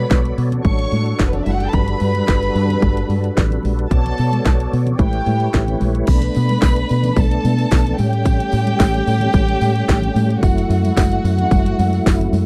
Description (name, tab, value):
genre	disco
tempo	110 BPM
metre	4/4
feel	straight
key	B minor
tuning	A4 = 440 Hz
part	dark studio violin section	second line	0.0-12.5 s	B3 to C#6	-26 LUFS	equal	slapback echo
part	tonewheel organ	sustained chords	0.0-12.5 s	F#3 to D5	-25 LUFS	equal	overdrive, chorus vibrato, slow rotary speaker
part	deep dub fingered electric bass	bass	0.0-12.5 s	E#1 to B2	-20 LUFS	equal	none
part	house drum kit	drums	0.1-12.5 s	crash cymbal, hi-hat, kick drum, snare drum	-19 LUFS	equal	none
part	congas	percussion	0.1-12.5 s	none	-29 LUFS	equal	none
part	tambourine	percussion	6.1-12.5 s	none	-43 LUFS	equal	none
room	little or no reverb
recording	dry, close 1970s-style studio recording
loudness	-17 LUFS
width	mono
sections	0.0-6.1 A section; 6.1-12.5 B section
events	none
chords	0.0 Bm7; 0.6 D/A; 1.7 Gmaj7; 3.9 Bm7; 5.0 A7; 6.1 Bm7; 8.0 A7; 10.4 F#m7